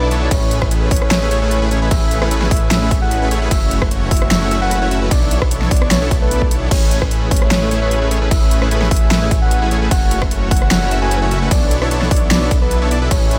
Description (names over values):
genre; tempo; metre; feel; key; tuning
future bass; 150 BPM; 4/4; half-time; A major; A4 = 440 Hz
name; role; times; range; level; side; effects
soft octave-layered synth lead; melody; 0.0-13.4 s; B4 to G#5; -26 LUFS; equal; chorus, sidechain pumping, delay
dense compressed supersaw; riff; 0.0-13.4 s; A3 to E5; -23 LUFS; equal; cassette tape, sidechain pumping
detuned saw bass; bass; 0.0-13.4 s; F#1 to B1; -21 LUFS; equal; chorus, sidechain pumping
big-room dance drum kit; drums; 0.1-13.4 s; crash cymbal, hi-hat, rim click, snare drum; -23 LUFS; equal; overdrive
electronic kick drum; drums; 0.3-13.2 s; none; -18 LUFS; equal; overdrive
swell; sound effects; 6.2-6.7 s; none; -34 LUFS; equal; none
room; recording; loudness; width
digital ambience; none; -15 LUFS; mono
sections
0.0-13.4 A section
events
none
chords
0.3 Amaj9; 3.5 F#m7; 5.1 Bm11; 6.7 Amaj9; 9.9 F#m7; 11.5 Bm11